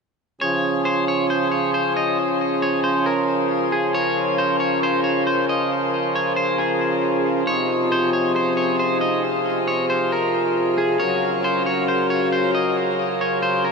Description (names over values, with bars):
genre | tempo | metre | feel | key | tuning
hip hop | 136 BPM | 4/4 | half-time | Db major | A4 = 439 Hz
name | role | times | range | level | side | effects
electric guitar at the edge of break-up | melody | 0.4-13.7 s | Ab4 to Eb5 | -22 LUFS | equal | ping-pong delay
hand-pumped harmonium | sustained chords | 0.4-13.7 s | C3 to F5 | -20 LUFS | equal | none
drifting glass-harmonics texture | texture | 2.4-13.7 s | F4 to C6 | -31 LUFS | equal | none
room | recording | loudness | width
wet huge ambient reverb, RT60 8.7 s | dreamy mix soaked in reverb, nothing above 10.9 kHz | -18 LUFS | side -4 dB against mid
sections
0.4-13.7 A section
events
none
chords
0.4 Dbmaj7; 7.5 Fm7; 11.0 Gbmaj7